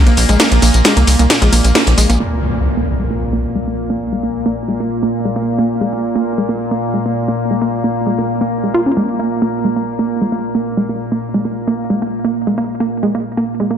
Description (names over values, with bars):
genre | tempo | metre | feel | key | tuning
driving peak-time techno | 133 BPM | 4/4 | straight | unclear | A4 = 442 Hz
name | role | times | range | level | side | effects
deep dark ambient pad | drone | 0.0-13.8 s | Bb2 to Bb3 | -19 LUFS | left 1 dB | chorus, built-in reverb
warbly dusty pluck | riff | 0.1-13.8 s | Ab3 to F4 | -18 LUFS | right 2 dB | chorus, tube saturation, digital delay
tight sequencer bass | bass | 0.1-2.2 s | Bb1 to C2 | -12 LUFS | equal | none
dusty soul sampler-style drum kit | drums | 0.1-2.2 s | hi-hat, shaker, snare drum | -25 LUFS | right 1 dB | none
techno drum kit | drums | 0.1-2.2 s | hi-hat, ride cymbal, snare drum, tambourine | -14 LUFS | equal | low-pass filter on hats, low-pass filter on perc, low-pass filter on snare, low-pass filter on cymbals, low-pass filter on room
impact | sound effects | 2.2-4.0 s | none | -20 LUFS | equal | none
room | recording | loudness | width
moderate stone room reverb, RT60 1.1 s, digital ambience | none | -13 LUFS | side -8 dB against mid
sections
0.0-2.2 A section; 2.2-13.8 B section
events
drop 0.0-2.2; band accent 1.8; impact 2.2-4.0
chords
none